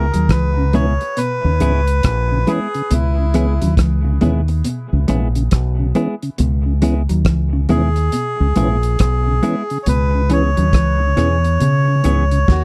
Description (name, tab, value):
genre	roots reggae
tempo	69 BPM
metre	4/4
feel	swing 63% on 16ths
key	C# dorian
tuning	A4 = 442 Hz
part	melodica	melody	0.0-12.6 s	E4 to C#5	-24 LUFS	equal	dub echo
part	clean electric guitar	accompaniment	0.0-12.2 s	E3 to G#4	-23 LUFS	equal	dub echo
part	mellow electric guitar	arpeggios	0.0-12.2 s	G#2 to F#3	-26 LUFS	equal	none
part	deep dub fingered electric bass	bass	0.0-12.6 s	A#1 to C#3	-18 LUFS	equal	none
part	cloth-damped thuddy drum kit	drums	0.1-12.6 s	hi-hat, kick drum, rim click, snare drum	-21 LUFS	equal	none
part	mellow tonewheel organ	accompaniment	0.6-12.4 s	C#3 to C#4	-24 LUFS	equal	chorus vibrato, slow rotary speaker
room	little or no reverb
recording	dry, close 1970s-style studio recording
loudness	-17 LUFS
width	mono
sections	0.0-12.6 A section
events	drum fill 12.5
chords	0.0 C#m7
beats	0.30 1.17 2.04 | 2.91 3.78 4.65 5.52 | 6.39 7.26 8.13 9.00 | 9.87 10.74 11.61 12.48